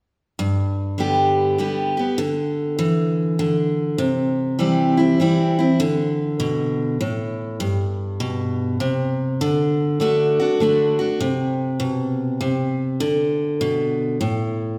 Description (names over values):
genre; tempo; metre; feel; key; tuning
country; 100 BPM; 3/4; swing 65% on 8ths; G major; A4 = 442 Hz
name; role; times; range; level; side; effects
picked steel-string acoustic guitar; solo; 0.4-14.8 s; G2 to G4; -21 LUFS; equal; none
room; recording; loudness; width
wet concert hall reverb, RT60 1.7 s; recorded in a church or concert hall; -21 LUFS; mono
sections
0.4-7.6 A section; 7.6-14.8 B section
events
none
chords
0.4 G; 2.2 Dsus2; 4.0 C; 5.8 D5; 7.6 G; 9.4 D; 11.2 N.C.; 13.0 D5